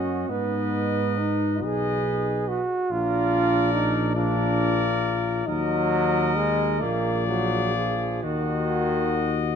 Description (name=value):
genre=classical, hymn-like piece for brass band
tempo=40-48 BPM (dotted quarters)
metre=6/8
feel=rubato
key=Eb minor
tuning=A4 = 435 Hz
part: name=clear cornet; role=melody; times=0.0-9.6 s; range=D5 to Eb5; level=-30 LUFS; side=left 10 dB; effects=none
part: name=warm flugelhorn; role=second line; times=0.0-9.5 s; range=Gb4 to Cb5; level=-31 LUFS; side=right 7 dB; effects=none
part: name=mellow trombone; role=accompaniment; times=0.0-9.6 s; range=Eb3 to Ab4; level=-26 LUFS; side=right 3 dB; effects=none
part: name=warm euphonium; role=accompaniment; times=0.0-9.6 s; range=D4 to Gb4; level=-29 LUFS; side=left 5 dB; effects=none
part: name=dark tuba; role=bass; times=0.0-9.6 s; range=Bb1 to Ab2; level=-27 LUFS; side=equal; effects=none
room=moderate scoring stage reverb, RT60 1.8 s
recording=none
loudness=-22 LUFS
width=side -7 dB against mid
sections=0.0-9.6 A section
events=none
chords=0.3 Abm; 2.9 Bb; 5.5 Ebm; 6.8 Bb7; 8.2 Ebm